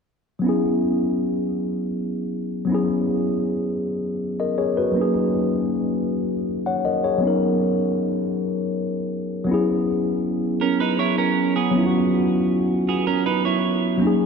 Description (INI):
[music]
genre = R&B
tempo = 53 BPM (dotted quarters)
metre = 6/8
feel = straight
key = unclear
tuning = A4 = 439 Hz
[part]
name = tine electric piano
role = accompaniment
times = 0.4-14.3 s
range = F#3 to F#5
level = -20 LUFS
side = left 1 dB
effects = overdrive, phaser
[part]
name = clean electric guitar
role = second line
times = 10.6-14.0 s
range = B3 to C#5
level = -23 LUFS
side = right 8 dB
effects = wide subtle chorus
[sound]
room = wet lush hall reverb, RT60 3.1 s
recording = dreamy mix soaked in reverb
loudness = -20 LUFS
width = side -5 dB against mid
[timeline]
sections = 0.4-9.5 A section; 9.5-14.3 B section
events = none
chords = 0.4 E69; 5.0 F#6; 9.5 E69